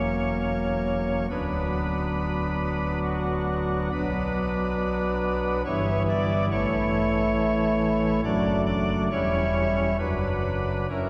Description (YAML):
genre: classical, chorale-style piece for pipe organ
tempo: 69 BPM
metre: 3/4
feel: rubato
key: B minor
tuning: A4 = 440 Hz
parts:
  - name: pipe organ, cornet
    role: solo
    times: 0.0-11.1 s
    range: D1 to D5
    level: -25 LUFS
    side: equal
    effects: none
room: wet church reverb, RT60 3.0 s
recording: heard from further back in the room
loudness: -25 LUFS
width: mono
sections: 0.0-11.1 A section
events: none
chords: 0.0 F#7/E; 1.3 Bm/D; 3.9 Bm; 5.7 Em/G; 6.5 A; 8.3 D/F#; 9.1 C#dim/E; 10.0 Bm/F#